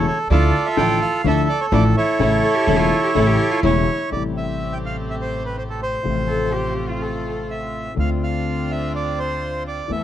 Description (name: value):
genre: tango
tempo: 125 BPM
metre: 4/4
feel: rubato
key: A minor from 4.1 s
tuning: A4 = 437 Hz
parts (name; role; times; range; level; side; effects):
- bandoneon; melody; 0.0-10.0 s; E4 to G5; -21 LUFS; right 2 dB; none
- warm concert grand piano; accompaniment; 0.0-10.0 s; E1 to A4; -23 LUFS; left 6 dB; none
- rich chamber string section; stabs; 0.0-10.0 s; E3 to A4; -29 LUFS; right 3 dB; none
- upright bass; bass; 0.0-10.0 s; E1 to E2; -24 LUFS; right 1 dB; none
- warm cello; second line; 2.4-7.4 s; E4 to A4; -25 LUFS; left 2 dB; none
room: small room ambience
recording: dry, close 1970s-style studio recording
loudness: -18 LUFS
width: side -11 dB against mid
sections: 0.0-4.1 A section; 4.1-10.0 B section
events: none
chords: 0.3 Dmadd9; 2.2 A; 4.1 Am7; 6.0 F/A; 8.0 Dm7